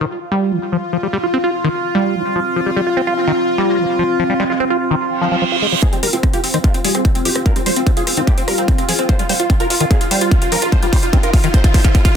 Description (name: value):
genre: psychedelic trance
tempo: 147 BPM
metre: 4/4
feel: straight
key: unclear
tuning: A4 = 440 Hz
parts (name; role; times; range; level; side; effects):
- evolving wavetable pad; sustained chords; 0.1-12.2 s; F4; -22 LUFS; left 2 dB; phaser, built-in reverb, sidechain pumping
- liquid acid bass; riff; 0.0-12.1 s; Eb3 to F4; -20 LUFS; moving between left 3 dB and right 5 dB; phaser, auto-pan, sidechain pumping, digital delay
- deep dark ambient pad; texture; 1.2-12.2 s; C4 to C6; -24 LUFS; right 2 dB; chorus, built-in reverb, sidechain pumping
- metallic wobble bass; second line; 3.2-5.4 s; F3 to C4; -29 LUFS; left 4 dB; wide subtle chorus, cassette tape, sidechain pumping, high-pass filter, ping-pong delay
- reverse cymbal and riser; sound effects; 5.2-12.2 s; none; -24 LUFS; right 5 dB; none
- supersaw stab; melody; 5.8-12.1 s; C4 to C5; -21 LUFS; right 1 dB; phaser, sidechain pumping, low-pass filter, digital delay
- electronic kick drum; drums; 5.8-12.1 s; none; -14 LUFS; equal; distortion
- techno drum kit; drums; 5.8-12.1 s; hi-hat, rim click; -21 LUFS; left 2 dB; soft clipping on snare
- plucky analog bass; bass; 5.9-12.1 s; Eb1 to F2; -32 LUFS; equal; none
room: light reverb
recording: dense, heavily limited modern master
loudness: -13 LUFS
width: side -7 dB against mid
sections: 0.0-5.8 A section; 5.8-12.2 B section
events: reverse cymbal 5.2-5.8; build-up 5.8-12.2; riser 5.8-12.2; filter sweep on acid bass 5.8-12.2; filter sweep on supersaw synth 5.8-12.2; filter sweep on ambient pad 5.8-12.2; drum fill 9.1-12.2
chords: 0.0 F5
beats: 0.11 0.52 | 0.93 1.33 1.74 2.15 | 2.56 2.97 3.38 3.78 | 4.19 4.60 5.01 5.42 | 5.83 6.23 6.64 7.05 | 7.46 7.87 8.27 8.68 | 9.09 9.50 9.91 10.31 | 10.72 11.13 11.54 11.95